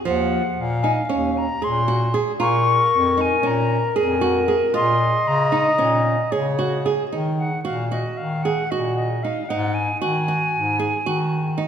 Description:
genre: contemporary instrumental, chamber music in an uneven meter.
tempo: 230 BPM (eighths).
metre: 9/8.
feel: straight.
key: unclear.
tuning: A4 = 442 Hz.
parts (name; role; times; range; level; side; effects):
celesta; texture; 0.0-7.3 s; Ab5 to Db6; -29 LUFS; left 6 dB; none.
reedy silver concert flute; melody; 0.1-11.5 s; Eb5 to Db6; -23 LUFS; left 2 dB; none.
flamenco guitar; arpeggios; 0.1-11.7 s; F3 to Ab4; -24 LUFS; right 5 dB; none.
clear bass clarinet; bass; 0.1-11.7 s; Eb2 to Eb3; -24 LUFS; left 1 dB; none.
mellow clarinet; second line; 2.4-6.9 s; Bb4 to Eb5; -22 LUFS; left 2 dB; none.
room: wet concert hall reverb, RT60 2.2 s.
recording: none.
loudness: -18 LUFS.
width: side -8 dB against mid.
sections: 0.0-7.1 A section; 7.1-11.7 B section.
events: none.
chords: 0.1 Ebm9; 2.4 Bbm7; 4.7 Gbmaj7/Bb (rootless); 7.1 Ebm; 9.5 Ab5.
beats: | 0.06 0.32 0.58 0.84 1.10 1.36 1.62 1.88 2.14 | 2.40 2.66 2.92 3.18 3.44 3.70 3.96 4.22 4.48 | 4.74 5.00 5.26 5.52 5.79 6.05 6.32 6.59 6.85 | 7.12 7.38 7.65 7.91 8.18 8.44 8.71 8.97 9.23 | 9.49 9.76 10.02 10.28 10.54 10.79 11.06 11.32 11.57.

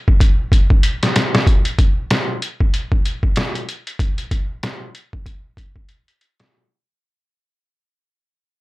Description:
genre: hip hop.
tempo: 95 BPM.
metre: 4/4.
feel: swing 59% on 16ths.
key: none.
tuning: none.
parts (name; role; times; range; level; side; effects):
trip hop sampler-style drum kit; drums; 0.1-6.5 s; hi-hat, kick drum, snare drum; -15 LUFS; equal; none.
room: little or no reverb.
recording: none.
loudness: -15 LUFS.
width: side -20 dB against mid.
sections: 0.0-1.5 A section; 1.5-6.5 B section.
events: drum fill 0.8-1.5, 5.9-6.5; fade-out 1.5-6.5.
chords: none.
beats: 0.20 0.83 | 1.47 2.10 2.73 3.36 | 3.99 4.62 5.26 5.89.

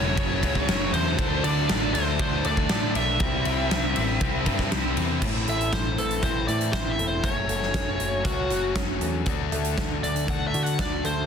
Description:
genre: quiet-loud alternative rock.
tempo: 119 BPM.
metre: 4/4.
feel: straight.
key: A dorian.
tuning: A4 = 440 Hz.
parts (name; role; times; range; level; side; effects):
smooth overdriven lead guitar; melody; 0.0-11.3 s; F#4 to F#5; -29 LUFS; equal; digital delay.
cranked stack guitar; riff; 0.0-11.3 s; F#2 to F#4; -31 LUFS; left 13 dB; overdrive.
distorted electric guitar; riff; 0.0-5.2 s; F#2 to D4; -32 LUFS; equal; overdrive.
scooped high-gain guitar; riff; 0.0-5.2 s; F#2 to D4; -32 LUFS; right 13 dB; distortion.
growling picked electric bass; bass; 0.0-11.3 s; E1 to D3; -29 LUFS; right 1 dB; overdrive.
huge arena drum kit; drums; 0.2-11.2 s; crash cymbal, hi-hat, kick drum, ride cymbal, snare drum; -27 LUFS; equal; none.
fingerpicked acoustic archtop guitar; arpeggios; 5.2-11.3 s; F#2 to F#4; -32 LUFS; right 2 dB; none.
room: little or no reverb.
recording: dense, heavily limited modern master.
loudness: -22 LUFS.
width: side -7 dB against mid.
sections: 0.0-5.2 A section; 5.2-11.3 B section.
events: lead electric guitar solo 5.2-11.3.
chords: 0.0 F#m; 1.2 D; 3.2 C; 5.2 Am; 7.2 F#m; 9.3 D.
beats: 0.17 0.68 | 1.18 1.69 2.19 2.70 | 3.20 3.71 4.21 4.72 | 5.22 5.73 6.23 6.74 | 7.24 7.75 8.26 8.76 | 9.27 9.78 10.28 10.79.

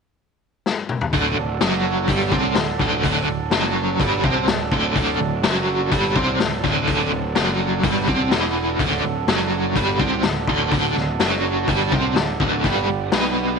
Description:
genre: psychedelic rock.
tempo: 125 BPM.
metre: 4/4.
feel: straight.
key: D mixolydian.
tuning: A4 = 440 Hz.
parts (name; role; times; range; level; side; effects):
raw garage drum kit; drums; 0.7-13.2 s; hi-hat, kick drum, snare drum, toms; -23 LUFS; left 4 dB; none.
pedal harmonium; sustained chords; 1.1-13.6 s; D3 to D5; -27 LUFS; right 11 dB; stereo widening.
biting overdriven guitar; riff; 1.1-13.6 s; D2 to C4; -20 LUFS; equal; tremolo.
fuzz picked electric bass; bass; 1.1-13.6 s; D1 to C2; -26 LUFS; right 1 dB; overdrive.
room: light reverb, small room ambience.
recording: 1960s-style stereo.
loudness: -18 LUFS.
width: side -5 dB against mid.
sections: 0.0-1.1 A section; 1.1-13.6 B section.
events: drum fill 0.6-1.1.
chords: 0.0 N.C.; 1.1 D; 12.6 G5.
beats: 0.17 0.65 | 1.13 1.60 2.08 2.56 | 3.04 3.52 4.00 4.47 | 4.95 5.43 5.91 6.39 | 6.87 7.35 7.83 8.31 | 8.80 9.28 9.76 10.24 | 10.72 11.20 11.68 12.16 | 12.64 13.12.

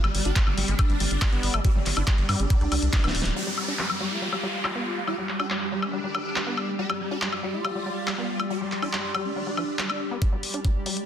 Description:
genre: psychedelic trance.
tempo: 140 BPM.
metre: 4/4.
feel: straight.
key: unclear.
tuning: A4 = 440 Hz.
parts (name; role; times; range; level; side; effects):
swarming rave lead; melody; 0.0-10.1 s; G3 to G4; -33 LUFS; equal; chorus, phaser, sidechain pumping, ping-pong delay.
pulsing gated texture; sustained chords; 0.0-11.1 s; G3 to G4; -35 LUFS; right 1 dB; chorus, built-in reverb, sidechain pumping.
overdriven acid bass; riff; 0.0-11.0 s; F3 to G4; -34 LUFS; left 1 dB; distortion, auto-pan, sidechain pumping, digital delay.
round analog bass; bass; 0.0-3.3 s; D1 to G2; -26 LUFS; equal; none.
big-room dance drum kit; drums; 0.0-11.1 s; handclaps, hi-hat, snare drum, woodblock; -29 LUFS; left 2 dB; high-pass filter on hats, low-pass filter on hats, small room ambience, high-pass filter on snare, low-pass filter on snare, high-pass filter on perc, low-pass filter on perc.
warbly tape-like pad; texture; 0.0-11.1 s; G3 to F6; -36 LUFS; equal; chorus, built-in reverb, phaser, sidechain pumping.
electronic kick drum; drums; 0.4-3.0, 10.2-10.7 s; none; -22 LUFS; equal; small room ambience.
downlifter; sound effects; 3.4-6.8 s; none; -32 LUFS; equal; none.
room: light reverb, digital ambience.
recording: dense, heavily limited modern master.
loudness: -23 LUFS.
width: side -9 dB against mid.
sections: 0.0-3.4 A section; 3.4-10.2 B section.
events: drop 0.0-3.4; drum fill 2.9-3.4; band accent 3.2; filter sweep on drum 3.4-10.2.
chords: 0.0 G5.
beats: 0.36 0.79 1.22 | 1.65 2.08 2.50 2.93 | 3.36 3.79 4.22 4.65 | 5.08 5.50 5.93 6.36 | 6.79 7.22 7.65 8.07 | 8.50 8.93 9.36 9.79 | 10.22 10.65.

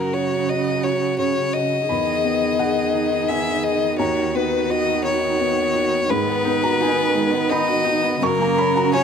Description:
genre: neoclassical piano and strings.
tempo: 85 BPM.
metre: 3/4.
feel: rubato.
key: B major.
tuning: A4 = 440 Hz.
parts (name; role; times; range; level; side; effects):
bright violin; melody; 0.0-9.0 s; A#4 to E5; -21 LUFS; left 4 dB; none.
rich cello; second line; 0.0-9.0 s; C#3 to D#3; -25 LUFS; right 8 dB; none.
clear viola; accompaniment; 0.0-9.0 s; F#3 to G#4; -27 LUFS; right 4 dB; none.
felt-muted upright piano; accompaniment; 0.0-9.0 s; D#2 to C#6; -23 LUFS; left 2 dB; none.
room: light reverb.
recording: none.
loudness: -18 LUFS.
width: side -7 dB against mid.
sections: 0.0-9.0 A section.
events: none.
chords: 0.0 F#; 1.9 Emaj7; 4.0 B/D#; 6.1 G#m7; 8.2 F#.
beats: 0.48 1.19 | 1.90 2.60 3.30 | 4.00 4.70 5.40 | 6.10 6.81 7.51 | 8.23 8.95.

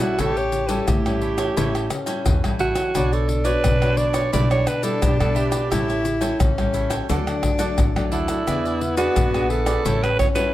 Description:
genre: samba and choro.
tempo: 87 BPM.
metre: 4/4.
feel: straight.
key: unclear.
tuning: A4 = 440 Hz.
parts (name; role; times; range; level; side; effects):
growling alto saxophone; melody; 0.0-10.5 s; E4 to D5; -24 LUFS; right 3 dB; none.
breathy tenor saxophone; second line; 0.0-10.5 s; B3 to G4; -26 LUFS; left 3 dB; none.
cavaquinho; accompaniment; 0.0-10.5 s; D4 to G5; -30 LUFS; right 5 dB; none.
nylon-string guitar; accompaniment; 0.0-10.5 s; A2 to C#5; -29 LUFS; left 4 dB; none.
upright bass; bass; 0.2-10.2 s; A1 to B2; -25 LUFS; equal; none.
maracas, surdo, pandeiro and tamborim; percussion; 0.2-10.5 s; none; -24 LUFS; left 1 dB; none.
room: light reverb.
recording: close, detailed microphones.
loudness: -18 LUFS.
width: side -14 dB against mid.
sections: 0.0-10.5 A section.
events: none.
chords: 0.2 A7; 3.0 Bmadd9; 4.3 Em7/B; 5.7 A7; 7.1 D; 8.5 E7; 9.9 A7.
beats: | 0.19 0.88 1.57 2.26 | 2.95 3.64 4.33 5.02 | 5.71 6.40 7.09 7.78 | 8.47 9.17 9.86.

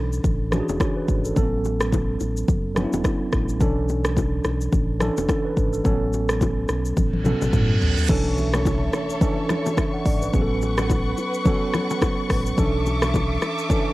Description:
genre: afrobeats.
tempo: 107 BPM.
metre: 4/4.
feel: swing 58% on 16ths.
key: B minor.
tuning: A4 = 445 Hz.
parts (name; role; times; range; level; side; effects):
mellow tine electric piano; accompaniment; 0.0-13.9 s; E3 to F#5; -25 LUFS; right 1 dB; medium stereo tremolo, cassette tape.
sub bass with octave; bass; 0.0-13.4 s; E1 to A2; -26 LUFS; equal; none.
afro-pop drum kit; drums; 0.1-13.9 s; crash cymbal, hi-hat, kick drum, rim click, shaker, toms; -23 LUFS; equal; cassette tape.
congas and bongos; percussion; 0.2-13.9 s; none; -28 LUFS; left 3 dB; none.
reverse cymbal and impact; sound effects; 7.2-10.3 s; none; -32 LUFS; right 2 dB; none.
warm symphonic string section; sustained chords; 8.1-13.9 s; A4 to D6; -29 LUFS; left 1 dB; cassette tape.
room: little or no reverb.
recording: home recording on cassette.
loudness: -20 LUFS.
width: side -18 dB against mid.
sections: 0.0-8.1 A section; 8.1-13.9 B section.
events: drum fill 7.0-8.1; reverse cymbal 7.2-8.1; impact 8.1-10.3.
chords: 0.0 Bm11; 1.4 A69; 3.6 Bm11; 5.8 A69; 8.1 Bm11; 10.3 A69; 12.6 Bm11.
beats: 0.24 0.80 | 1.36 1.93 2.48 3.05 | 3.61 4.17 4.73 5.29 | 5.85 6.41 6.97 7.53 | 8.09 8.65 9.21 9.78 | 10.34 10.90 11.46 12.02 | 12.58 13.14 13.70.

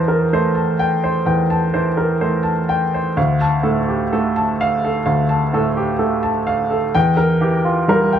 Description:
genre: neoclassical minimalist piano.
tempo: 64 BPM.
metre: 4/4.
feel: rubato.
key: D minor.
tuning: A4 = 440 Hz.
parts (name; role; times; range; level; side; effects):
clear upright piano; solo; 0.0-8.2 s; D2 to A5; -15 LUFS; equal; none.
room: wet studio reverb, RT60 0.6 s.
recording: heard from further back in the room.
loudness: -15 LUFS.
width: side -9 dB against mid.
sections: 0.0-8.2 A section.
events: none.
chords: 0.0 C6/E; 3.2 Dm; 6.9 Edim.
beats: 0.34 1.28 2.22 | 3.17 4.12 5.06 6.01 | 6.95 7.88.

